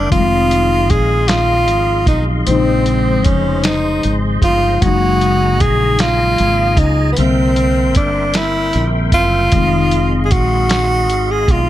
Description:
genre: slow six-eight R&B.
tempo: 51 BPM (dotted quarters).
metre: 6/8.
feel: straight.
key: unclear.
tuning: A4 = 437 Hz.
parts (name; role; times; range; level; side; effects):
breathy tenor saxophone; melody; 0.0-11.7 s; Cb4 to Ab4; -16 LUFS; right 1 dB; tape echo.
mellow tine electric piano; accompaniment; 0.0-11.7 s; Db3 to E5; -20 LUFS; left 6 dB; phaser.
percussive tonewheel organ; sustained chords; 0.0-11.7 s; Ab4 to C6; -24 LUFS; right 1 dB; overdrive, chorus vibrato, slow rotary speaker.
mellow fretless electric bass; bass; 0.0-11.7 s; F1 to Db2; -17 LUFS; right 1 dB; none.
dusty soul sampler-style drum kit; drums; 0.1-11.7 s; hi-hat, kick drum, snare drum; -16 LUFS; right 1 dB; none.
room: little or no reverb.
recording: none.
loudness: -12 LUFS.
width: side -13 dB against mid.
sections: 0.0-11.7 A section.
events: none.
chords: 0.1 Fm7; 2.5 Bbm11; 4.8 Gb69; 7.2 C7; 9.5 Fm7.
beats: | 0.11 1.29 | 2.47 3.64 | 4.82 6.00 | 7.17 8.35 | 9.53 10.70.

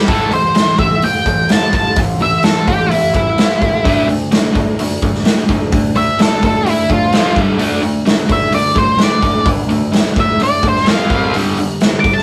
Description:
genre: garage rock duo or trio.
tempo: 128 BPM.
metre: 4/4.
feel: straight.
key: unclear.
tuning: A4 = 440 Hz.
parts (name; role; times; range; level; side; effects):
raw garage guitar; riff; 0.0-12.2 s; F2 to D4; -19 LUFS; equal; overdrive.
octave-fuzz lead guitar; melody; 0.1-12.2 s; E4 to D6; -17 LUFS; equal; distortion.
raw garage drum kit; drums; 0.1-12.2 s; hi-hat, kick drum, snare drum; -17 LUFS; equal; none.
room: moderate small room reverb, RT60 0.5 s.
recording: rough rehearsal-room recording.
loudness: -14 LUFS.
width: mono.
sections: 0.1-12.2 A section.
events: none.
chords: 0.1 A5; 3.9 D5; 7.1 F5; 7.4 G5; 7.6 D5; 10.9 F5; 11.1 C5; 11.3 G5.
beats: | 0.10 0.56 1.03 1.50 | 1.97 2.44 2.91 3.38 | 3.85 4.32 4.79 5.26 | 5.73 6.20 6.67 7.13 | 7.60 8.07 8.54 9.01 | 9.47 9.94 10.41 10.87 | 11.34 11.81.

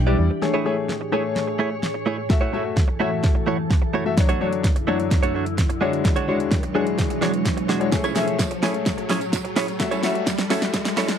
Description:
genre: dance-pop.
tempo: 128 BPM.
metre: 4/4.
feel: straight.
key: A major.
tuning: A4 = 440 Hz.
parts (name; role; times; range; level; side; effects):
glassy FM pad; sustained chords; 0.0-11.2 s; E2 to C#5; -28 LUFS; equal; ensemble chorus, built-in reverb, sidechain pumping.
warm baby grand piano; accompaniment; 0.1-11.0 s; F#3 to E5; -25 LUFS; left 6 dB; sidechain pumping.
direct-recorded clean electric guitar; riff; 0.1-11.1 s; G#3 to D5; -25 LUFS; right 5 dB; wide subtle chorus.
pop drum kit; drums; 0.4-11.2 s; hi-hat, kick drum, snare drum; -21 LUFS; equal; none.
riser; sound effects; 2.0-11.2 s; none; -32 LUFS; equal; none.
tambourine; percussion; 7.9-11.2 s; none; -39 LUFS; right 26 dB; none.
room: little or no reverb.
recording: dry, close 1970s-style studio recording, high-pass filter.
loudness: -19 LUFS.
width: side -8 dB against mid.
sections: 0.4-11.2 A section.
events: build-up 0.4-11.2; drum fill 0.4-11.2; filter sweep 0.4-11.2; riser 2.0-11.2.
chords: 0.4 Amaj7; 2.3 F#m7; 4.2 Dmaj7/F#; 5.8 E13; 7.9 Amaj7; 9.8 F#m7.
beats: | 0.42 0.89 1.36 1.83 | 2.30 2.77 3.24 3.71 | 4.17 4.64 5.11 5.58 | 6.05 6.52 6.99 7.46 | 7.92 8.39 8.86 9.33 | 9.80 10.27 10.74.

